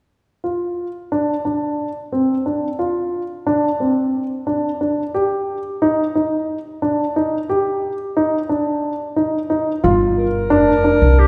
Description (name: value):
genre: contemporary instrumental, chamber music in an uneven meter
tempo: 179 BPM (eighths)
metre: 7/8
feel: straight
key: unclear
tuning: A4 = 442 Hz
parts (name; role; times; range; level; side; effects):
- dark concert grand piano; arpeggios; 0.4-11.3 s; C4 to G4; -20 LUFS; equal; none
- upright bass; bass; 9.8-11.3 s; F1 to C2; -18 LUFS; equal; none
- warm clarinet; melody; 10.2-11.3 s; G4 to Bb4; -20 LUFS; equal; none
room: wet concert hall reverb, RT60 2.2 s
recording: heard from further back in the room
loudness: -19 LUFS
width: mono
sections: 0.4-9.8 A section; 9.8-11.3 B section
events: none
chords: 0.4 Csus24; 5.1 Ebmaj7; 9.8 Gm7